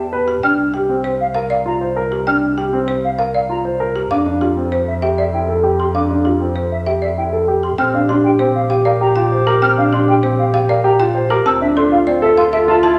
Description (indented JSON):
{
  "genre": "classical, minimalist pattern music",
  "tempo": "196 BPM",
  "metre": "6/4",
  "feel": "straight",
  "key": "unclear",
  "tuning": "A4 = 439 Hz",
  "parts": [
    { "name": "warm concert grand piano", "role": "arpeggios", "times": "0.0-13.0 s", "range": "C4 to C5", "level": "-19 LUFS", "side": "equal", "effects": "none" },
    { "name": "warm double bass", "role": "bass", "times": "0.0-13.0 s", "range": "Bb1 to F2", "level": "-25 LUFS", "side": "equal", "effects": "none" },
    { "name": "folk marimba with hard mallets", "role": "melody", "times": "0.3-13.0 s", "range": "G4 to A5", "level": "-24 LUFS", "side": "equal", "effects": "none" },
    { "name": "mellow silver concert flute", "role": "arpeggios", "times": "0.4-12.7 s", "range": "E5 to F6", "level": "-23 LUFS", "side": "equal", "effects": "none" },
    { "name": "warm clarinet", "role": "second line", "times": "7.8-13.0 s", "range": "F4 to G4", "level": "-23 LUFS", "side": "equal", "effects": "none" }
  ],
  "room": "wet recital hall reverb, RT60 1.3 s",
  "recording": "none",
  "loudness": "-16 LUFS",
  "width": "mono",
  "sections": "0.0-7.8 A section; 7.8-13.0 B section",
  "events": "none",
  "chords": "0.4 C7sus4; 4.1 Fmaj7sus2; 7.8 Bb6; 11.5 Dm7",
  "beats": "0.13 | 0.44 0.74 1.05 1.35 1.66 1.97 | 2.27 2.58 2.88 3.19 3.50 3.80 | 4.11 4.42 4.72 5.03 5.33 5.64 | 5.95 6.25 6.56 6.87 7.17 7.48 | 7.78 8.09 8.39 8.70 9.01 9.31 | 9.62 9.93 10.23 10.54 10.84 11.15 | 11.46 11.76 12.07 12.38 12.68 12.99"
}